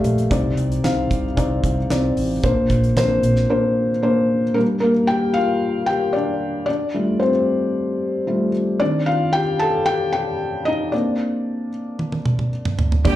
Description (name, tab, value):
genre	piano-driven pop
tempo	113 BPM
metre	4/4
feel	straight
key	unclear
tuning	A4 = 439 Hz
part	felt-muted upright piano	accompaniment	0.0-13.2 s	Bb2 to A5	-18 LUFS	left 1 dB	plate reverb, slapback echo
part	fingered electric bass	bass	0.0-3.4, 13.1-13.2 s	G1 to C2	-22 LUFS	right 1 dB	none
part	damped 70s drum kit	drums	0.0-3.4, 12.0-13.2 s	hi-hat, kick drum, snare drum, toms	-21 LUFS	right 1 dB	none
part	fingerpicked steel-string acoustic guitar	riff	13.0-13.2 s	G2 to G4	-21 LUFS	right 9 dB	none
part	rich studio violin section	second line	13.1-13.2 s	G4 to G5	-24 LUFS	right 3 dB	none
room	moderate club reverb, RT60 0.5 s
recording	live gig heard through the venue's PA, club reverb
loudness	-17 LUFS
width	side -13 dB against mid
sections	0.0-4.6 A section; 4.6-13.2 B section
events	felt piano solo 4.6-13.2; drum fill 12.0-13.1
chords	0.3 Cmadd9; 2.4 Bbadd9; 4.6 Gm; 6.7 Fadd9; 8.8 Cmadd9; 10.9 Bbadd9